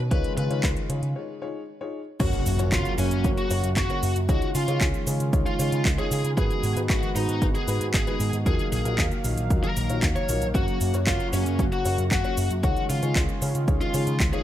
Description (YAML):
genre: italo disco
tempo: 115 BPM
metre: 4/4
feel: straight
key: F# major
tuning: A4 = 440 Hz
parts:
  - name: warm analog pad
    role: sustained chords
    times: 0.0-14.4 s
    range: C#3 to E#5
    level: -31 LUFS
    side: equal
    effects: chorus
  - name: picked electric bass with an envelope filter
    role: bass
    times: 0.0-14.3 s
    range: F#1 to C#3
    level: -26 LUFS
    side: equal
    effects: none
  - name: bluesy overdriven lead guitar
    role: melody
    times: 0.1-14.4 s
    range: C#4 to C#5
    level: -30 LUFS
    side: left 1 dB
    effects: distortion, ping-pong delay
  - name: dark baby grand piano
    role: stabs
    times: 0.1-14.4 s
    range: C#4 to C#5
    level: -33 LUFS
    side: left 4 dB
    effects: none
  - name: electronic kick drum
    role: drums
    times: 0.1-14.3 s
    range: none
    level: -26 LUFS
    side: equal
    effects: overdrive
  - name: house drum kit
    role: drums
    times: 0.1-14.4 s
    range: cabasa, crash cymbal, handclaps, hi-hat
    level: -31 LUFS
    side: equal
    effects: overdrive
  - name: impact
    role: sound effects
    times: 2.2-4.3 s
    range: none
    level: -32 LUFS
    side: equal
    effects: none
room: little or no reverb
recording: none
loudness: -22 LUFS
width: side -12 dB against mid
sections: 0.0-2.2 A section; 2.2-14.4 B section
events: break 1.2-2.2; impact 2.2-4.3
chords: 0.1 C#add9; 2.2 F#; 4.3 C#add9; 6.4 G#m7; 8.5 D#madd9; 10.5 F#; 12.6 C#add9